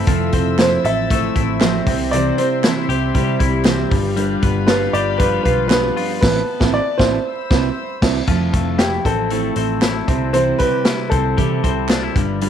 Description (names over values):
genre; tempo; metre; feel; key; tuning
jangly indie pop; 117 BPM; 4/4; straight; C major; A4 = 440 Hz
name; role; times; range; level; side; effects
fingerpicked steel-string acoustic guitar; accompaniment; 0.0-12.5 s; A2 to C5; -23 LUFS; right 12 dB; none
warm studio string section; sustained chords; 0.0-8.3 s; B3 to E6; -28 LUFS; left 2 dB; none
twelve-string electric guitar; arpeggios; 0.0-12.5 s; G2 to B4; -22 LUFS; left 10 dB; none
vintage muted picked electric bass; bass; 0.0-12.5 s; F1 to C3; -23 LUFS; equal; none
vintage drum kit; drums; 0.1-12.5 s; crash cymbal, hi-hat, kick drum, snare drum; -19 LUFS; equal; none
warm upright piano; melody; 0.6-12.1 s; G4 to E5; -20 LUFS; equal; slapback echo
group handclap; percussion; 0.6-12.0 s; none; -33 LUFS; right 13 dB; none
room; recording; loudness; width
light reverb, small room reverb; 1960s-style stereo with parts hard left and right; -15 LUFS; side -9 dB against mid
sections
0.0-8.3 A section; 8.3-12.5 B section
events
band accent 6.2-8.3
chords
0.1 Fmaj7; 1.9 C; 3.9 G7; 6.2 Amadd9; 7.3 Cmaj7; 8.3 Fmaj7; 10.1 C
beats
| 0.07 0.59 1.10 1.61 | 2.12 2.64 3.15 3.66 | 4.17 4.69 5.20 5.71 | 6.22 6.74 7.25 7.77 | 8.28 8.80 9.31 9.83 | 10.34 10.86 11.38 11.90 | 12.41